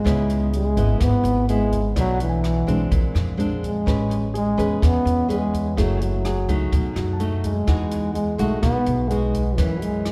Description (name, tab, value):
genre	bossa nova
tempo	126 BPM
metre	4/4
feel	straight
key	E major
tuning	A4 = 440 Hz
part	mellow trombone	melody	0.0-10.1 s	E3 to B3	-26 LUFS	equal	none
part	nylon-string guitar	accompaniment	0.0-10.1 s	F#2 to B4	-29 LUFS	equal	none
part	warm grand piano	accompaniment	0.1-9.8 s	F#4 to A5	-39 LUFS	equal	none
part	upright bass	bass	0.1-10.1 s	F#1 to F#2	-26 LUFS	equal	none
part	compact cocktail drum kit	drums	0.1-10.1 s	hi-hat, kick drum, rim click	-28 LUFS	equal	none
room	moderate church reverb, RT60 3.5 s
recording	recorded in a church or concert hall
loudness	-21 LUFS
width	mono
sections	0.0-10.1 A section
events	none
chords	0.1 C#m7; 2.0 Bm7; 2.9 A#9; 3.9 Amaj9; 5.8 F#m9; 6.7 B7; 7.7 Emaj9; 9.6 F#7(no3)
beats	| 0.06 0.53 1.01 1.49 | 1.96 2.44 2.92 3.39 | 3.87 4.35 4.82 5.30 | 5.78 6.25 6.73 7.20 | 7.68 8.15 8.63 9.11 | 9.58 10.06